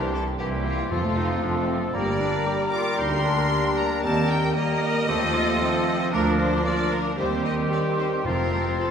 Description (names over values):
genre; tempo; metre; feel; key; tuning
quick classical-period movement for symphony orchestra; 115 BPM; 4/4; straight; unclear; A4 = 438 Hz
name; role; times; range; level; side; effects
rich studio violin section; melody; 0.0-8.9 s; F4 to D6; -29 LUFS; left 2 dB; none
bright clarinet; second line; 0.0-8.9 s; Bb3 to Bb4; -31 LUFS; left 1 dB; none
clear oboe; second line; 0.0-8.9 s; F4 to Bb4; -33 LUFS; right 2 dB; none
small flute group; second line; 0.0-8.9 s; Bb5 to D6; -33 LUFS; left 1 dB; none
warm studio violin section; second line; 0.0-8.9 s; G3 to Bb4; -33 LUFS; left 3 dB; none
rich studio viola section; accompaniment; 0.0-8.9 s; E3 to D4; -31 LUFS; right 2 dB; none
warm bassoon; accompaniment; 0.0-8.9 s; Eb3 to G3; -30 LUFS; right 1 dB; none
mellow French horn section; sustained chords; 0.0-8.9 s; F3 to G4; -31 LUFS; left 1 dB; none
dark studio double bass section; bass; 0.0-8.7 s; F1 to Eb2; -30 LUFS; right 1 dB; none
rich symphonic cello section; bass; 0.0-8.7 s; C2 to G2; -32 LUFS; right 2 dB; none
timpani; percussion; 0.9-1.6, 8.2-8.9 s; F2; -32 LUFS; equal; none
room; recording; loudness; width
wet recital hall reverb, RT60 1.6 s; recorded in a church or concert hall; -21 LUFS; side -7 dB against mid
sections
0.0-8.9 A section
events
none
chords
0.0 C7; 0.9 F; 1.9 Gm; 4.0 Eb; 5.1 F7/Eb; 6.1 Bb/D; 7.2 Cm/Eb; 8.3 F